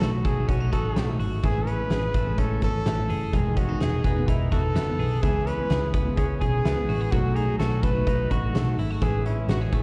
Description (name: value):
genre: jangly indie pop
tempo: 127 BPM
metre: 4/4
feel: straight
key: unclear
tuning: A4 = 439 Hz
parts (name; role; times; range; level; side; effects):
- clear trumpet; melody; 0.0-9.8 s; E4 to B4; -32 LUFS; equal; plate reverb, slapback echo
- picked steel-string acoustic guitar; accompaniment; 0.0-9.8 s; A2 to E4; -35 LUFS; equal; plate reverb, slapback echo
- twelve-string electric guitar; arpeggios; 0.0-9.8 s; D#3 to G#4; -35 LUFS; equal; spring reverb, plate reverb, slapback echo
- vintage muted picked electric bass; bass; 0.0-9.8 s; E1 to C#2; -29 LUFS; equal; tube saturation
- loose indie drum kit; drums; 0.0-9.8 s; hi-hat, kick drum, snare drum; -29 LUFS; equal; none
room: light reverb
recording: live gig heard through the venue's PA, recital hall reverb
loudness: -24 LUFS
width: mono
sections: 0.0-9.8 A section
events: none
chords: 0.0 B7; 1.4 Amaj7; 3.3 Emaj7; 5.2 C#m7; 7.1 B7; 9.0 Amaj7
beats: 0.01 0.49 0.96 | 1.43 1.91 2.38 2.85 | 3.33 3.80 4.28 4.75 | 5.22 5.70 6.17 6.65 | 7.12 7.59 8.07 8.54 | 9.02 9.49